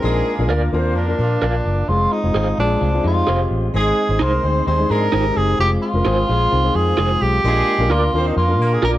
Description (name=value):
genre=soul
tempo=130 BPM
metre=4/4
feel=straight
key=F dorian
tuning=A4 = 442 Hz
part: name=mellow tenor saxophone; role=melody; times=0.0-8.9 s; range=D4 to C5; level=-20 LUFS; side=right 1 dB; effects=none
part: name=dark horn section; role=second line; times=0.0-8.8 s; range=F3 to C5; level=-25 LUFS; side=right 2 dB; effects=none
part: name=dark concert grand piano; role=accompaniment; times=0.0-9.0 s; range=Ab3 to Bb4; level=-23 LUFS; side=left 3 dB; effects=tube saturation
part: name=mellow tonewheel organ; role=sustained chords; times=0.0-9.0 s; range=Ab3 to D6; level=-31 LUFS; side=right 2 dB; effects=none
part: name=electric guitar through a small old amp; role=riff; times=0.0-7.2 s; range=Eb3 to Ab4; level=-28 LUFS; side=left 5 dB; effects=none
part: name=vintage muted fingered electric bass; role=bass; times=0.0-9.0 s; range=F1 to Bb2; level=-19 LUFS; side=equal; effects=none
part: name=electric guitar through a small old amp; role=stabs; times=0.5-9.0 s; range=Eb4 to F5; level=-23 LUFS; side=right 4 dB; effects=tremolo
room=light reverb, small room ambience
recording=none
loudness=-15 LUFS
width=side -14 dB against mid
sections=0.0-9.0 A section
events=none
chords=0.0 Bb; 1.9 Fm; 3.7 Ab; 5.6 Fm; 7.4 Bb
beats=| 0.04 0.50 0.96 1.43 | 1.89 2.35 2.81 3.28 | 3.74 4.20 4.67 5.13 | 5.59 6.05 6.51 6.98 | 7.44 7.90 8.37 8.83